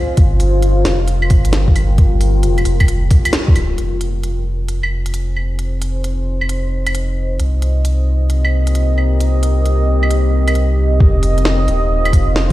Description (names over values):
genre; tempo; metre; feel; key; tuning
future garage; 133 BPM; 4/4; swing 65% on 16ths; F minor; A4 = 441 Hz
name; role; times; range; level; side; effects
deep dark ambient pad; sustained chords; 0.0-12.5 s; G3 to Ab5; -21 LUFS; left 1 dB; chorus, built-in reverb, vintage 12-bit sampler grit, sidechain pumping
warm sub bass; bass; 0.2-12.5 s; D1 to C2; -15 LUFS; equal; sidechain pumping
electronic kick drum; drums; 0.2-3.5, 11.0-12.5 s; none; -11 LUFS; equal; none
organic electronic drum kit; drums; 0.2-12.5 s; claves, hi-hat, snare drum; -22 LUFS; right 1 dB; none
room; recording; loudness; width
light reverb; played on a big sound system in a bare room, stone room reverb; -13 LUFS; side -16 dB against mid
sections
0.0-3.8 A section; 3.8-11.0 B section; 11.0-12.5 C section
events
band accent 3.3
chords
0.2 Gm7; 3.8 Fm7; 7.4 Cm7; 11.0 Fm7